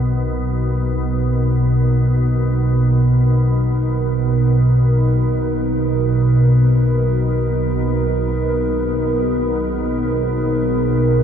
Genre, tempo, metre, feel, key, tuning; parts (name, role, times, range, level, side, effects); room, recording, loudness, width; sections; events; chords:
dark ambient drone; free time; B major; A4 = 445 Hz
dark analog pad; sustained chords; 0.0-11.2 s; D#4 to C5; -22 LUFS; right 1 dB; chorus
organ-like drone; drone; 0.0-11.2 s; B1 to B2; -16 LUFS; equal; ensemble chorus, built-in reverb
wet cathedral reverb, RT60 6.0 s; in a vast, echoing space, cassette tape; -15 LUFS; side -8 dB against mid
0.0-11.2 A section
fade-in on analog synth pad 0.0-11.2
0.0 B; 6.9 G#sus2